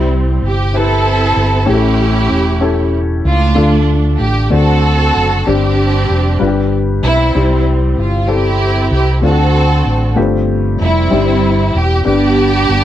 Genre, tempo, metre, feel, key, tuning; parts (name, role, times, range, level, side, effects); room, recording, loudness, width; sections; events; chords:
slow gospel; 64 BPM (dotted quarters); 6/8; straight; C major; A4 = 438 Hz
rich studio string section; melody; 0.0-12.8 s; G3 to A4; -15 LUFS; right 3 dB
warm upright piano; accompaniment; 0.0-12.8 s; G2 to C5; -16 LUFS; left 4 dB
fingered electric bass; bass; 0.0-12.8 s; E1 to D2; -14 LUFS; right 1 dB
little or no reverb; dry, close 1970s-style studio recording; -10 LUFS; side -12 dB against mid
0.0-12.8 A section
0.0 C; 1.7 A7; 3.6 Dm; 4.5 D7; 5.5 Gsus4; 6.4 G; 7.3 C; 9.2 D7; 10.2 G9sus4; 11.1 C/G; 12.1 G